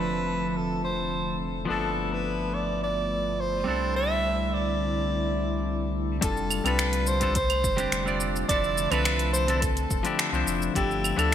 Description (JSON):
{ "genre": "sunset chillout", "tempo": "106 BPM", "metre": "4/4", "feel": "straight", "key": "D dorian", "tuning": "A4 = 440 Hz", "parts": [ { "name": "breathy soprano saxophone", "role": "melody", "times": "0.0-11.3 s", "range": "G4 to E5", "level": "-29 LUFS", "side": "equal", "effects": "ping-pong delay" }, { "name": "semi-hollow electric guitar", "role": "accompaniment", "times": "0.0-11.3 s", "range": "F3 to D5", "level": "-29 LUFS", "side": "moving between left 7 dB and right 5 dB", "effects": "auto-pan, ping-pong delay" }, { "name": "airy breathy pad", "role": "sustained chords", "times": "0.0-11.3 s", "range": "D3 to E4", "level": "-34 LUFS", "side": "right 1 dB", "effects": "chorus" }, { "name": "warm sub bass", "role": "bass", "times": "0.0-11.3 s", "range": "F1 to D2", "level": "-31 LUFS", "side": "equal", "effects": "none" }, { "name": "drifting glass-harmonics texture", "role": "texture", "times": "0.0-6.2 s", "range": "A4 to A5", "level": "-45 LUFS", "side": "left 3 dB", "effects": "none" }, { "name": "deep house drum kit", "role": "drums", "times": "6.2-11.3 s", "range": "claves, finger snaps, hi-hat, shaker", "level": "-29 LUFS", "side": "right 1 dB", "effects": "gated reverb" }, { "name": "electronic kick drum", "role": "drums", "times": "6.2-10.9 s", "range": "none", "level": "-30 LUFS", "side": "equal", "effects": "none" } ], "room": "moderate lush hall reverb, RT60 1.9 s", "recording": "bright 1980s-style digital production", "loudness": "-24 LUFS", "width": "side -10 dB against mid", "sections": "0.0-6.2 A section; 6.2-11.3 B section", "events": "filter sweep on analog synth pad 0.0-6.2", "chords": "0.0 Dm7/F; 1.7 G13; 3.7 C69; 6.2 F69; 8.5 Dm7/F; 10.8 G13" }